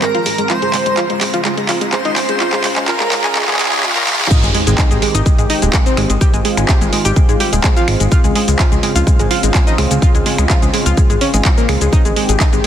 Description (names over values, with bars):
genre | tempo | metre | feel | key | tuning
progressive house | 126 BPM | 4/4 | straight | Ab major | A4 = 440 Hz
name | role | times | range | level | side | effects
wide unison lead | melody | 0.0-4.3 s | F4 to C5 | -21 LUFS | right 2 dB | lush chorus, ping-pong delay
airy dreamy lead | second line | 0.0-4.3 s | F4 to C5 | -24 LUFS | equal | chorus, sidechain pumping, dub echo
lush unison pad | sustained chords | 0.0-12.7 s | Db3 to Ab4 | -22 LUFS | right 1 dB | chorus, vintage 12-bit sampler grit, sidechain pumping
analog pluck | arpeggios | 0.0-12.7 s | Ab3 to Bb4 | -19 LUFS | equal | chorus, sidechain pumping, dub echo
pop drum kit | drums | 0.0-12.7 s | cabasa, crash cymbal, finger snaps, handclaps, hi-hat | -18 LUFS | equal | sidechain pumping on perc, high-pass filter on perc, soft clipping on snare, high-pass filter on snare, sidechain pumping on hats, high-pass filter on hats, sidechain pumping on cymbals, high-pass filter on cymbals
riser and sub drop | sound effects | 0.0-6.2 s | none | -24 LUFS | equal | none
twinkling granular texture | texture | 0.0-4.3 s | Bb5 | -31 LUFS | equal | none
electronic kick drum | drums | 4.3-12.5 s | none | -13 LUFS | equal | none
fat analog bass | bass | 4.4-12.6 s | Eb1 to Ab2 | -16 LUFS | equal | sidechain pumping
room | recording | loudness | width
light reverb, digital ambience | dense, heavily limited modern master, high-pass filter | -11 LUFS | side -10 dB against mid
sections
0.0-4.3 A section; 4.3-12.7 B section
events
build-up 0.0-4.3; drum fill 0.0-4.3; riser 0.0-4.3; filter sweep on synth arpeggio sound 0.0-4.3; filter sweep on analog synth pad 0.0-4.3; filter sweep 0.0-4.3; drop 4.3-12.7; impact 4.3-6.2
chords
0.5 Dbmaj7; 4.3 Abmaj7; 8.1 Dbmaj7; 11.9 Abmaj7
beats
0.02 | 0.50 0.97 1.45 1.93 | 2.40 2.88 3.35 3.83 | 4.31 4.78 5.26 5.74 | 6.21 6.69 7.16 7.64 | 8.12 8.59 9.07 9.54 | 10.02 10.50 10.97 11.45 | 11.93 12.40